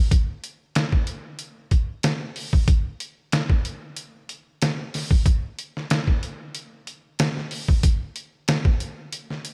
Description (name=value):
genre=blues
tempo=93 BPM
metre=4/4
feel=swing 54% on 16ths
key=none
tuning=none
part: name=trip hop sampler-style drum kit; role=drums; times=0.1-9.5 s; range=hi-hat, kick drum, snare drum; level=-23 LUFS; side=equal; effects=none
room=light reverb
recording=none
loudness=-24 LUFS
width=mono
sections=0.0-9.5 A section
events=none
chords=none